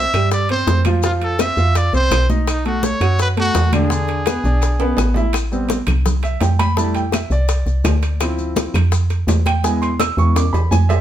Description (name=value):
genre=latin, salsa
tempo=167 BPM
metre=4/4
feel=straight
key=A minor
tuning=A4 = 440 Hz
part: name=bright trumpet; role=melody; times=0.0-5.1 s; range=D#4 to E5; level=-21 LUFS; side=right 1 dB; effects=none
part: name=clear baby grand piano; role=accompaniment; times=0.0-11.0 s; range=D3 to E6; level=-22 LUFS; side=right 1 dB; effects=none
part: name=woody FM bass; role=bass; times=0.0-11.0 s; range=A1 to G2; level=-17 LUFS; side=equal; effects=none
part: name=bongos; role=percussion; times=0.1-11.0 s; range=none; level=-26 LUFS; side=left 7 dB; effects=none
part: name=claves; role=percussion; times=0.1-10.9 s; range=none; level=-32 LUFS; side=left 7 dB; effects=none
part: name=congas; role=percussion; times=0.1-10.9 s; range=none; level=-25 LUFS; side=equal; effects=none
part: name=maracas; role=percussion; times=0.1-11.0 s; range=none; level=-33 LUFS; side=left 4 dB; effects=none
part: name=timbales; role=percussion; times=0.1-11.0 s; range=none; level=-28 LUFS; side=right 4 dB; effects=none
room=moderate studio reverb, RT60 0.7 s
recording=band playing live in one room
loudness=-15 LUFS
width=side -11 dB against mid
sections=0.0-5.3 A section; 5.3-11.0 B section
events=drum fill 4.8-5.3, 10.4-11.0; grand piano solo 5.3-11.0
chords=0.0 C5; 1.0 F5; 2.5 B7; 3.9 E7; 5.3 Am7; 6.8 Fmaj7; 8.2 Dm7; 9.6 E